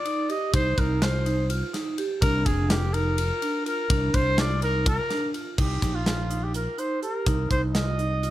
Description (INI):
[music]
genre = progressive instrumental, band music in an uneven meter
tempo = 250 BPM (eighths)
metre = 7/8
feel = straight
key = C minor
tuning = A4 = 440 Hz
[part]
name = breathy trumpet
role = melody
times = 0.0-8.3 s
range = F4 to Eb5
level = -28 LUFS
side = left 1 dB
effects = tape echo
[part]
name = vibraphone with medium mallets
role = arpeggios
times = 0.1-8.3 s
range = D4 to G4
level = -30 LUFS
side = right 3 dB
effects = none
[part]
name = tight metal drum kit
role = drums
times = 0.1-8.3 s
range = crash cymbal, hi-hat, kick drum, ride cymbal, snare drum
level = -28 LUFS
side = equal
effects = none
[part]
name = fretless electric bass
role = bass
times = 0.5-8.3 s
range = F1 to C2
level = -26 LUFS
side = equal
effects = none
[sound]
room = light reverb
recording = none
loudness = -22 LUFS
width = side -14 dB against mid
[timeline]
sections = 0.0-5.6 A section; 5.6-8.3 B section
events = trumpet solo 0.0-5.6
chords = 0.0 Cm; 2.2 F7sus4; 5.6 Cm7